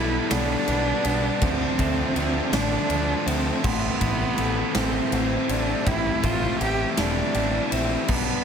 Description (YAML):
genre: post-rock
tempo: 54 BPM (dotted quarters)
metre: 6/8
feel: straight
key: A minor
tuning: A4 = 439 Hz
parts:
  - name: rich cello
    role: melody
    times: 0.0-8.4 s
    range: B3 to G4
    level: -27 LUFS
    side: right 3 dB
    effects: digital delay
  - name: evolving wavetable pad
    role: sustained chords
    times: 0.2-8.4 s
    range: F4 to C6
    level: -39 LUFS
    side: left 2 dB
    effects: none
  - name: vibraphone with hard mallets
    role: arpeggios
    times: 0.0-8.4 s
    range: A4 to C6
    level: -35 LUFS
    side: right 2 dB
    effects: digital delay
  - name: fuzz guitar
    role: riff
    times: 0.0-8.4 s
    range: A2 to E4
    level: -28 LUFS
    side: left 12 dB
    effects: distortion
  - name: tight distorted guitar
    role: riff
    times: 0.0-8.4 s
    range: A2 to E4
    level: -30 LUFS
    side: right 14 dB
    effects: distortion
  - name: growling picked electric bass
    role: bass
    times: 0.0-8.3 s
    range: E1 to D2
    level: -28 LUFS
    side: equal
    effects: overdrive
  - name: big rock drum kit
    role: drums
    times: 0.3-8.3 s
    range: crash cymbal, kick drum, ride cymbal, snare drum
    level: -28 LUFS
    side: equal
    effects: none
room: light reverb, small room ambience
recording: none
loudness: -21 LUFS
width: side -7 dB against mid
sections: 0.0-8.4 A section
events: none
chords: 0.0 G/B; 1.4 Dm7; 3.6 Am7